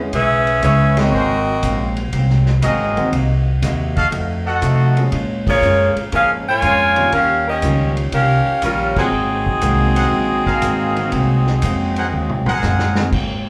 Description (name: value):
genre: jazz, big band swing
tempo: 120 BPM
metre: 4/4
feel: swing 69% on 8ths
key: Ab mixolydian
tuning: A4 = 440 Hz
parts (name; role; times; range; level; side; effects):
- warm grand piano; accompaniment; 0.0-13.1 s; Eb3 to Ab4; -27 LUFS; equal; none
- upright bass; bass; 0.0-13.5 s; Ab1 to C3; -21 LUFS; equal; none
- bright saxophone section; melody; 0.1-2.0, 5.5-12.6 s; G3 to Ab5; -19 LUFS; equal; plate reverb, slapback echo
- hollow-body jazz guitar; accompaniment; 0.1-13.5 s; Ab2 to Gb4; -28 LUFS; equal; slapback echo
- vintage drum kit; drums; 0.1-13.3 s; crash cymbal, hi-hat, kick drum, ride cymbal, snare drum, toms; -28 LUFS; equal; none
- clear trumpet section; stabs; 0.6-13.1 s; Fb4 to Gb5; -24 LUFS; equal; plate reverb, slapback echo
room: moderate club reverb, RT60 0.8 s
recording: live gig heard through the venue's PA, club reverb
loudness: -17 LUFS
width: mono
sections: 0.0-13.1 A section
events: band accent 0.9, 5.4, 8.9; drum fill 12.1-13.1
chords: 0.0 Dbm7; 1.1 Ab9; 3.1 Cm7b5; 4.1 F7b9; 5.1 Bbm7; 7.1 Eb9; 9.1 Ab9